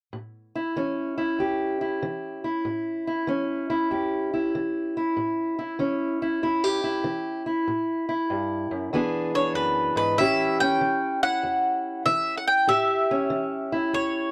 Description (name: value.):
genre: acoustic country blues, solo or duo.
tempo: 96 BPM.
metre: 4/4.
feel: swing 66% on 8ths.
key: A mixolydian.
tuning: A4 = 440 Hz.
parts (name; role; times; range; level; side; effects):
fingerpicked steel-string acoustic guitar; accompaniment; 0.1-14.3 s; E2 to G#4; -28 LUFS; equal; none.
mandolin; melody; 9.4-14.3 s; B4 to G5; -25 LUFS; equal; none.
room: moderate booth ambience, RT60 0.3 s.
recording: dry, close 1970s-style studio recording.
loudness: -26 LUFS.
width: mono.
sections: 0.1-10.2 A section; 10.2-14.3 B section.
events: none.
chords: 0.1 A7; 8.9 E7; 10.2 A7.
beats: | 0.12 0.75 1.38 2.01 | 2.64 3.27 3.90 4.53 | 5.16 5.79 6.41 7.04 | 7.67 8.30 8.92 9.55 | 10.18 10.80 11.43 12.05 | 12.68 13.31 13.93.